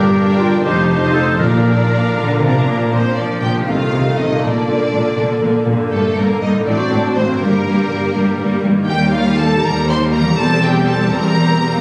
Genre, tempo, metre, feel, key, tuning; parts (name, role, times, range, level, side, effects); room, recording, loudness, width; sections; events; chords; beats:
classical, dramatic, fast romantic movement for symphony orchestra; 80 BPM (dotted quarters); 6/8; straight; Bb major; A4 = 440 Hz
rich studio violin section; melody; 0.0-11.8 s; A4 to C6; -25 LUFS; equal
warm clarinet; second line; 0.0-2.7 s; F4 to Bb4; -22 LUFS; equal
warm symphonic violin section; second line; 0.0-11.8 s; A3 to Bb5; -28 LUFS; equal
rich symphonic viola section; accompaniment; 0.0-11.8 s; D3 to C5; -21 LUFS; equal
concert harp; arpeggios; 0.0-11.8 s; F2 to Bb4; -26 LUFS; equal
rich symphonic cello section; bass; 0.0-11.8 s; Eb2 to D3; -20 LUFS; equal
warm symphonic double bass section; bass; 0.0-11.8 s; E1 to Eb2; -24 LUFS; equal
timpani; percussion; 1.4-2.1 s; Bb2; -24 LUFS; equal
moderate scoring stage reverb, RT60 1.8 s; recorded on a phone in the room, studio reverb; -15 LUFS; mono
0.0-2.9 A section; 2.9-11.8 B section
0.0 Gm; 0.7 F9; 1.4 Bb; 3.7 F7/C; 4.4 Bb; 5.9 Gm; 6.7 D7/A; 7.4 Gm; 8.9 Eb; 10.4 C7/E
0.65 | 1.41 2.17 | 2.92 3.68 | 4.43 5.17 | 5.92 6.66 | 7.41 8.15 | 8.88 9.62 | 10.37 11.12